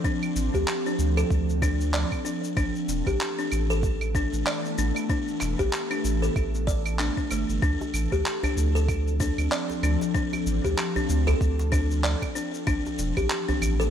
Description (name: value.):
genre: organic downtempo.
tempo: 95 BPM.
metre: 4/4.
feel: swing 58% on 16ths.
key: D dorian.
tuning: A4 = 440 Hz.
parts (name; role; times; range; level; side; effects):
ethereal airy pad; sustained chords; 0.0-13.9 s; E3 to A4; -32 LUFS; equal; ensemble chorus, built-in reverb, phaser, vintage 12-bit sampler grit, sidechain pumping.
buzzing kalimba; arpeggios; 0.0-13.9 s; A3 to D5; -28 LUFS; left 2 dB; vintage 12-bit sampler grit, ping-pong delay.
electronic kick drum; drums; 0.0-13.3 s; none; -28 LUFS; equal; overdrive, small room ambience.
electronic shaker, claves and handclaps; drums; 0.0-13.9 s; none; -32 LUFS; right 1 dB; small room ambience.
warm sub bass; bass; 0.4-13.9 s; E1 to D2; -26 LUFS; equal; sidechain pumping.
djembe; percussion; 7.8-13.8 s; none; -33 LUFS; right 2 dB; none.
room: light reverb.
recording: none.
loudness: -23 LUFS.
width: side -9 dB against mid.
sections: 0.0-13.9 A section.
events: none.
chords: 0.0 Dm7; 2.6 Asus2; 7.6 Dm7; 12.7 Asus2.